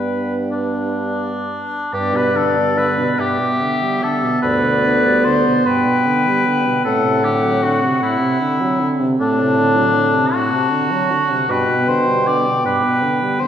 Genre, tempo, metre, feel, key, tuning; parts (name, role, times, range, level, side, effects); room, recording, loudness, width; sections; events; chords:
classical, slow romantic movement for wind quintet; 41-54 BPM (dotted quarters); 12/8; rubato; G major; A4 = 440 Hz
bright silver concert flute; melody; 0.0-13.5 s; D5 to A5; -23 LUFS; left 4 dB
warm oboe; second line; 0.0-13.5 s; D4 to D5; -19 LUFS; equal
clear French horn; accompaniment; 0.0-13.5 s; G2 to B3; -24 LUFS; equal
mellow clarinet; accompaniment; 0.0-13.5 s; B3 to D4; -22 LUFS; right 2 dB
mellow bassoon; bass; 0.0-12.5 s; D2 to B2; -21 LUFS; equal
wet scoring stage reverb, RT60 1.6 s; heard from further back in the room; -14 LUFS; side -9 dB against mid
0.0-1.9 A section; 1.9-13.5 A section
0.0 G; 6.8 D7/A; 11.5 G